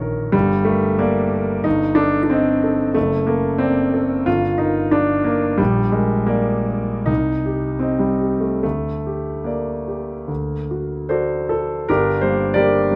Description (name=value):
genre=classical, romantic character piece for solo piano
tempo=71-94 BPM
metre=4/4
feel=rubato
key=G minor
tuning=A4 = 441 Hz
part: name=clear concert grand piano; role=solo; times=0.0-13.0 s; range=F#1 to Eb5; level=-19 LUFS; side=equal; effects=none
room=light reverb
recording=close, detailed microphones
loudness=-19 LUFS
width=mono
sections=0.0-11.9 A section; 11.9-13.0 B section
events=none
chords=0.3 Gm; 1.6 Am7b5/G; 3.0 D7/F#; 4.3 Gm; 5.6 Bb; 7.1 Cm; 8.6 Gm/D; 10.3 D; 11.9 Gm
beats=| 0.33 0.99 1.65 2.30 | 2.95 3.61 4.26 4.92 | 5.59 6.31 7.09 7.83 | 8.63 9.46 10.29 11.11 | 11.88 12.55